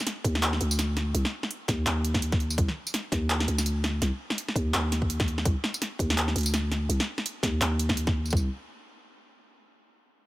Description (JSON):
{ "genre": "half-time drum and bass", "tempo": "167 BPM", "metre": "4/4", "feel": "swing 57% on 16ths, half-time", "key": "unclear", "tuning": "A4 = 440 Hz", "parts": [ { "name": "drum and bass drum kit", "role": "drums", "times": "0.0-8.4 s", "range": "handclaps, hi-hat, snare drum, tambourine", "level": "-29 LUFS", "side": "equal", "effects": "overdrive, studio reverb" }, { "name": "growling 808-style bass", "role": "bass", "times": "0.2-8.5 s", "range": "C2 to Eb2", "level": "-27 LUFS", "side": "equal", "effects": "none" }, { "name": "electronic kick drum", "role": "drums", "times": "0.2-8.4 s", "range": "none", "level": "-28 LUFS", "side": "equal", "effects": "overdrive, studio reverb" } ], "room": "digital ambience", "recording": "none", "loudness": "-25 LUFS", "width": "side -18 dB against mid", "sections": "0.0-8.3 A section; 8.3-9.8 B section", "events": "none", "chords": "none" }